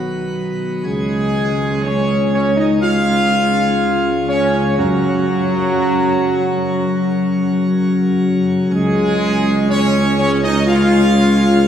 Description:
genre	classical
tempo	61 BPM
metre	4/4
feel	straight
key	Db mixolydian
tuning	A4 = 441 Hz
part	warm trumpet section	melody	0.0-11.7 s	Gb4 to F5	-22 LUFS	right 1 dB	none
part	dark trombone section	sustained chords	0.0-11.7 s	Gb3 to F4	-21 LUFS	right 1 dB	none
part	mellow French horn section	sustained chords	0.0-11.7 s	Gb3 to F4	-23 LUFS	left 3 dB	none
part	pipe organ, plenum	sustained chords	0.0-11.7 s	Db3 to Cb5	-21 LUFS	left 1 dB	none
part	dark tuba	bass	0.0-11.7 s	Cb2 to Gb2	-17 LUFS	equal	none
room	wet cathedral reverb, RT60 5.4 s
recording	heard from further back in the room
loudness	-14 LUFS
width	side -9 dB against mid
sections	0.0-11.7 A section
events	none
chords	0.0 Cb; 0.8 Db; 4.8 Gb; 8.7 Db

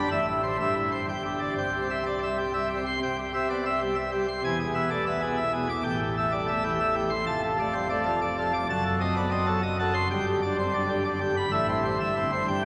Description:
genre	classical, organ toccata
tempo	126 BPM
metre	3/4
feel	straight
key	C major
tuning	A4 = 439 Hz
part	pipe organ, plenum	solo	0.0-12.7 s	E1 to D6	-27 LUFS	equal	none
room	wet cathedral reverb, RT60 5.8 s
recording	none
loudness	-27 LUFS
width	mono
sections	0.0-3.0 A section; 3.0-12.7 B section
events	none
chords	0.1 Am; 0.6 C/G; 1.1 G5; 1.6 C; 4.4 E7; 5.9 Am7; 7.3 Dm/F; 8.7 F#dim7; 10.1 G; 11.5 Am; 12.0 C/G

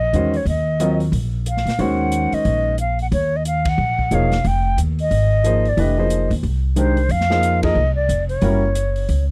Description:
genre	modal jazz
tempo	181 BPM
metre	4/4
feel	swing 62% on 8ths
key	Eb dorian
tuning	A4 = 440 Hz
part	mellow silver concert flute	melody	0.0-9.2 s	C5 to G5	-23 LUFS	equal	none
part	upright bass	bass	0.0-9.3 s	Fb1 to Bb2	-22 LUFS	equal	none
part	warm concert grand piano	accompaniment	0.1-8.6 s	Eb3 to Eb5	-24 LUFS	equal	none
part	swinging big-band drum kit	drums	0.1-9.2 s	hi-hat, kick drum, ride cymbal, snare drum	-32 LUFS	equal	none
room	little or no reverb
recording	dry, close 1970s-style studio recording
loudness	-19 LUFS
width	mono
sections	0.0-9.3 A section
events	band accent 3.6, 7.6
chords	0.0 Ebm11; 4.4 Fm11; 8.4 Gb7b9

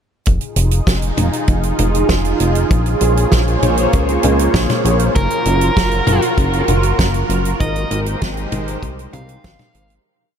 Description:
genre	synthwave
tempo	98 BPM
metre	4/4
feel	straight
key	F minor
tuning	A4 = 438 Hz
part	lush unison pad	sustained chords	0.3-10.0 s	Ab3 to Db5	-18 LUFS	right 2 dB	chorus, phaser, sidechain pumping, shimmer reverb
part	chorused synth bass	bass	0.3-10.0 s	F1 to Db2	-17 LUFS	equal	tube saturation
part	kick drum	drums	0.3-9.6 s	none	-18 LUFS	equal	none
part	natural country drum kit	drums	0.3-10.0 s	hi-hat, snare drum, toms	-21 LUFS	right 1 dB	none
part	dark smooth lead guitar	melody	5.2-9.9 s	Bb4 to F5	-22 LUFS	equal	overdrive, vintage 12-bit sampler grit, ping-pong delay, shimmer reverb
room	moderate huge ambient reverb, RT60 8.2 s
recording	dreamy mix soaked in reverb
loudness	-13 LUFS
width	side -8 dB against mid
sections	0.3-10.1 verse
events	fade-out 6.8-10.1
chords	0.3 Fm7; 2.7 Bbm7; 5.2 Gbmaj7; 7.6 Abmaj7

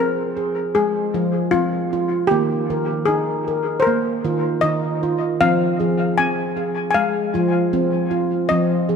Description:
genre	world meditative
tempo	77 BPM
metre	4/4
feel	straight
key	F minor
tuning	A4 = 440 Hz
part	steel pan	melody	0.0-9.0 s	F4 to Ab5	-21 LUFS	left 3 dB	diffuse ambient delay
part	handpan	arpeggios	0.0-9.0 s	Eb3 to Bb4	-20 LUFS	right 1 dB	diffuse ambient delay
room	wet church reverb, RT60 3.2 s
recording	none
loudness	-17 LUFS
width	side -6 dB against mid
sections	0.0-9.0 A section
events	none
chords	0.0 Fm; 2.3 Eb; 5.4 Fm

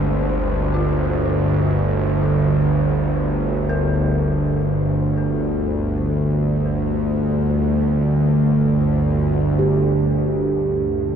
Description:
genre	dark ambient drone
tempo	free time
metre	none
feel	none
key	unclear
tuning	A4 = 440 Hz
part	dark detuned synth bell	arpeggios	0.0-9.6 s	Ab3 to Bb4	-34 LUFS	left 1 dB	none
part	bowed-like drone	drone	0.0-11.2 s	G1 to D2	-17 LUFS	equal	built-in reverb
part	bronze singing bowl	texture	0.0-11.2 s	G4 to C5	-28 LUFS	right 2 dB	none
part	deep dark ambient pad	sustained chords	9.6-11.2 s	none	barely audible	none	none
room	wet cathedral reverb, RT60 5.4 s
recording	none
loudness	-17 LUFS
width	side -8 dB against mid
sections	0.0-9.6 A section; 9.6-11.2 B section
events	none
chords	0.0 Fm/G; 9.6 Gm

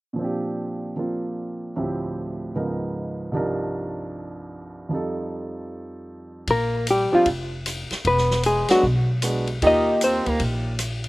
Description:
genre	jazz, small-group swing and bop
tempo	153 BPM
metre	4/4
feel	swing 64% on 8ths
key	Bb major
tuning	A4 = 439 Hz
part	warm grand piano	accompaniment	0.1-10.7 s	C2 to Bb4	-26 LUFS	right 2 dB	none
part	hollow-body jazz guitar	melody	6.5-10.4 s	F4 to Eb5	-20 LUFS	left 2 dB	none
part	breathy tenor saxophone	second line	6.5-10.4 s	F3 to Eb4	-27 LUFS	right 2 dB	slapback echo
part	upright bass	bass	6.5-11.1 s	E1 to Eb2	-25 LUFS	equal	none
part	vintage drum kit	drums	6.5-11.1 s	hi-hat, kick drum, ride cymbal, rim click, snare drum	-30 LUFS	left 1 dB	none
room	little or no reverb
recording	recorded outdoors, with no room sound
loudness	-21 LUFS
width	side -19 dB against mid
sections	0.2-6.5 A section; 6.5-11.1 B section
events	none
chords	0.2 Bb69; 1.8 Dm11; 2.6 Db13; 3.3 Cm11; 4.9 F9; 6.5 Bb5; 8.1 E9; 9.6 Ebadd9

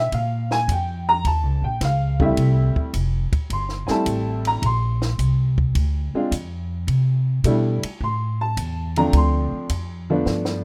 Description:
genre	jazz, small-group swing and bop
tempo	106 BPM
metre	4/4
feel	swing 69% on 8ths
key	unclear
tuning	A4 = 437 Hz
part	warm upright piano	accompaniment	0.0-10.6 s	F3 to C6	-25 LUFS	equal	none
part	upright bass	bass	0.0-10.6 s	F1 to C3	-24 LUFS	equal	none
part	compact cocktail drum kit	drums	0.1-10.6 s	hi-hat, kick drum, ride cymbal, snare drum	-29 LUFS	equal	none
room	little or no reverb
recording	rough home demo mix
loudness	-22 LUFS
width	mono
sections	0.0-10.6 A section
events	drum fill 10.3-10.6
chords	0.1 Bb5; 1.2 Eb7; 2.4 Fmaj9; 4.6 Bbadd9; 6.9 C69; 8.0 A5; 9.1 Dm7

